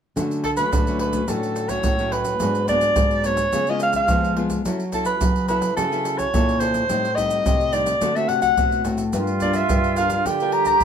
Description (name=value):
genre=samba and choro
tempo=107 BPM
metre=4/4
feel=straight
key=unclear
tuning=A4 = 440 Hz
part: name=nylon-string guitar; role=accompaniment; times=0.2-10.8 s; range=G#2 to Bb4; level=-27 LUFS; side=left 5 dB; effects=none
part: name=nylon-string guitar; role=bass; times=0.2-10.8 s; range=G2 to F#3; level=-26 LUFS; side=equal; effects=none
part: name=maracas, surdo and pandeiro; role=percussion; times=0.2-10.8 s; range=none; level=-26 LUFS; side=right 1 dB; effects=none
part: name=mellow soprano saxophone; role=melody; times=0.4-10.8 s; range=A4 to Bb5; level=-21 LUFS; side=equal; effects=plate reverb
part: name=bright concert flute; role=second line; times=9.1-10.8 s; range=F4 to G4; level=-23 LUFS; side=right 7 dB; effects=none
room=moderate small room reverb, RT60 0.5 s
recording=none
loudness=-18 LUFS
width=side -8 dB against mid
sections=0.2-10.8 A section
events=none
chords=0.2 Dmaj7; 2.4 G#m7b5; 3.5 C#7; 4.7 F#m7; 6.9 Am7b5; 8.0 D7; 9.1 Gm7